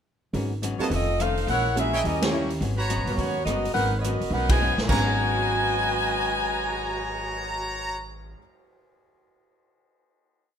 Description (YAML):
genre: jazz, big band swing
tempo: 211 BPM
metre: 4/4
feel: swing 62% on 8ths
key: G# minor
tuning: A4 = 440 Hz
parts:
  - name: archtop guitar, miked and amplified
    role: accompaniment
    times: 0.3-8.5 s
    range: F2 to E4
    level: -34 LUFS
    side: left 6 dB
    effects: none
  - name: dark baby grand piano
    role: accompaniment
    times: 0.3-8.4 s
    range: G#2 to B4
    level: -34 LUFS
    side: right 4 dB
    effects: none
  - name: upright bass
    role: bass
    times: 0.3-8.3 s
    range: F1 to D#2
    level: -29 LUFS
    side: equal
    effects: none
  - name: swinging big-band drum kit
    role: drums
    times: 0.3-7.1 s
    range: crash cymbal, cymbal swell, hi-hat, kick drum, ride cymbal, rim click, snare drum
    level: -30 LUFS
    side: equal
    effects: none
  - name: clear saxophone section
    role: melody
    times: 0.8-7.9 s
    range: F#3 to G#5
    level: -25 LUFS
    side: equal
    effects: none
  - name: brilliant trumpet section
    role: stabs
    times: 0.8-8.0 s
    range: E4 to A#5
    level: -31 LUFS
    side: right 1 dB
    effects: none
room: light reverb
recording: minimal, uncompressed stereo recording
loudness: -22 LUFS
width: side -8 dB against mid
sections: 0.3-4.9 A section; 4.9-7.2 final chord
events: band accent 2.2, 4.5; drum fill 4.3-4.9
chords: 0.3 G#m11; 0.9 F7b13; 1.5 A#m7b5; 2.0 D#7b9; 2.6 G#m11